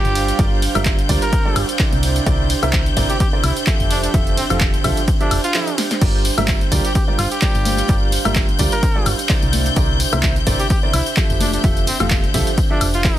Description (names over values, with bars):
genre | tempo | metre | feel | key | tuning
piano house | 128 BPM | 4/4 | swing 55% on 16ths | G dorian | A4 = 439 Hz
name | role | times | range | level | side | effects
warm trumpet | melody | 0.0-13.2 s | C4 to Bb4 | -26 LUFS | equal | dub echo
rich symphonic string section | sustained chords | 0.0-13.2 s | G6 | -26 LUFS | left 6 dB | sidechain pumping
clear upright piano | riff | 0.0-13.2 s | C3 to F5 | -25 LUFS | right 3 dB | sidechain pumping
solid FM bass | bass | 0.0-13.1 s | F1 to D2 | -21 LUFS | equal | sidechain pumping
punchy analog drum machine | drums | 0.0-13.1 s | crash cymbal, handclaps, hi-hat, ride cymbal, snare drum, woodblock | -23 LUFS | left 1 dB | overdrive
airy breathy pad | texture | 0.0-13.2 s | D4 to F5 | -26 LUFS | right 5 dB | chorus, sidechain pumping
electronic kick drum | drums | 0.4-13.1 s | none | -18 LUFS | equal | overdrive
tambourine and congas | percussion | 6.0-13.2 s | none | -28 LUFS | left 6 dB | none
room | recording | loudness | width
studio reverb | dense, heavily limited modern master | -15 LUFS | side -13 dB against mid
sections
0.0-13.2 A section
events
drum fill 5.8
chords
0.0 Gm7; 2.0 C9; 3.9 Fmaj9; 6.0 Gm7; 9.5 C9; 11.4 Fmaj9